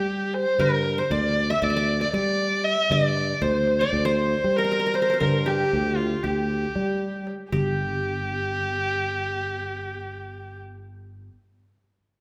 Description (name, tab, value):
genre	Turkish makam ensemble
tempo	234 BPM (eighths)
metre	9/8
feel	straight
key	G makam huseyni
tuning	A4 = 440 Hz
part	dark violin	melody	0.0-10.6 s	F4 to E5-28c	-27 LUFS	equal	none
part	qanun	second line	0.0-11.3 s	G4 to E5-30c	-32 LUFS	equal	none
part	sustaining fretless electric bass	bass	0.0-11.3 s	G1 to G3	-30 LUFS	equal	none
part	darbuka	percussion	0.2-7.8 s	none	-32 LUFS	equal	none
room	wet recital hall reverb, RT60 1.6 s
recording	none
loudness	-24 LUFS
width	mono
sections	0.0-7.5 A section; 7.5-9.8 B section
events	none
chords	none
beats	0.08 0.34 | 0.60 0.85 1.11 1.37 1.62 1.88 2.14 2.39 2.65 | 2.91 3.16 3.42 3.68 3.93 4.19 4.45 4.70 4.96 | 5.21 5.47 5.73 5.98 6.24 6.50 6.75 7.01 7.26 | 7.52 7.78 8.03 8.29 8.54 8.80 9.06 9.31 9.57